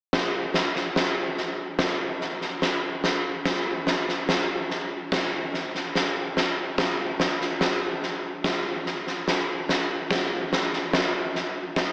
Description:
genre	rock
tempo	72 BPM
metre	4/4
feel	straight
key	none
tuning	none
part	huge arena drum kit	drums	0.1-11.9 s	kick drum, snare drum	-26 LUFS	equal	none
room	wet plate reverb, RT60 2.2 s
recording	dreamy mix soaked in reverb, AM radio sound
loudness	-26 LUFS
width	mono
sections	0.1-11.9 A section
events	none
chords	none

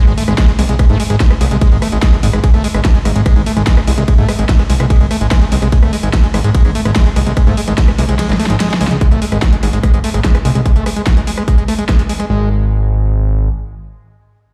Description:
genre	psychedelic trance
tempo	146 BPM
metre	4/4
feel	straight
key	unclear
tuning	A4 = 440 Hz
part	screaming distorted acid line	riff	0.0-12.5 s	F#3 to A3	-21 LUFS	equal	distortion, chorus, sidechain pumping, dub echo
part	fat analog bass	bass	0.1-13.5 s	G#1 to G#2	-16 LUFS	equal	tube saturation
part	big-room dance drum kit	drums	0.1-12.3 s	hi-hat, ride cymbal, rim click, snare drum	-23 LUFS	equal	overdrive
part	electronic kick drum	drums	0.4-12.0 s	none	-12 LUFS	equal	overdrive
room	little or no reverb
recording	played on a big sound system in a bare room, large studio reverb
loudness	-13 LUFS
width	mono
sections	0.0-9.0 A section; 9.0-12.3 B section; 12.3-14.5 C section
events	drop 0.0-9.0; kick drops out 8.2-9.0; drum fill 8.2-9.0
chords	0.0 G#5; 9.0 N.C.

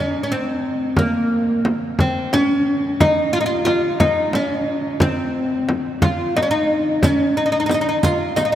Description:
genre	Persian modal ensemble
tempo	59 BPM (dotted quarters)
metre	6/8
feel	straight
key	unclear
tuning	A4 = 437 Hz
part	oud	melody	0.0-8.6 s	Bb3 to F4	-18 LUFS	equal	none
part	frame drum	percussion	1.0-8.5 s	none	-22 LUFS	equal	none
part	riq	percussion	7.0-8.5 s	none	-35 LUFS	right 4 dB	none
room	wet cathedral reverb, RT60 6.0 s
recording	in a vast, echoing space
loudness	-16 LUFS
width	side -11 dB against mid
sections	0.0-8.6 A section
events	none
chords	none

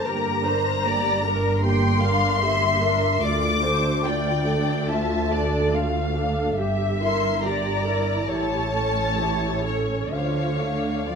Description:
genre	classical, slow romantic movement for string orchestra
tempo	62-78 BPM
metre	4/4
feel	rubato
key	D minor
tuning	A4 = 440 Hz
part	clear symphonic violin section	melody	0.0-11.2 s	C#5 to D6	-26 LUFS	left 3 dB	none
part	rich chamber violin section	second line	0.0-11.2 s	Bb4 to G5	-27 LUFS	left 3 dB	none
part	warm symphonic viola section	accompaniment	0.0-11.2 s	F3 to Bb4	-27 LUFS	right 2 dB	none
part	rich symphonic cello section	bass	0.0-11.2 s	D2 to F3	-28 LUFS	right 1 dB	none
part	rich symphonic double bass section	bass	0.0-11.2 s	G1 to D2	-28 LUFS	right 2 dB	none
room	moderate recital hall reverb, RT60 1.4 s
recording	none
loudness	-20 LUFS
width	side -6 dB against mid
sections	0.0-11.2 A section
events	none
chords	0.0 Gm; 3.2 Dm; 6.6 Edim/G; 8.3 A7; 10.1 Dm

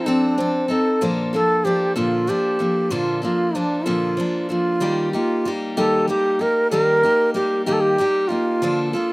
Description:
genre	acoustic folk duo or small band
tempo	63 BPM (dotted quarters)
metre	6/8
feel	straight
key	Bb major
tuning	A4 = 439 Hz
part	breathy mellow bansuri	melody	0.0-9.1 s	D4 to Bb4	-19 LUFS	right 1 dB	none
part	picked steel-string acoustic guitar	accompaniment	0.0-9.1 s	Bb2 to A4	-22 LUFS	left 1 dB	none
room	little or no reverb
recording	recorded outdoors, with no room sound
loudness	-17 LUFS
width	side -23 dB against mid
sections	0.0-9.1 A section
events	none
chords	0.0 F7; 1.0 Bbmaj7; 4.8 Eb; 8.6 Bbmaj7/D

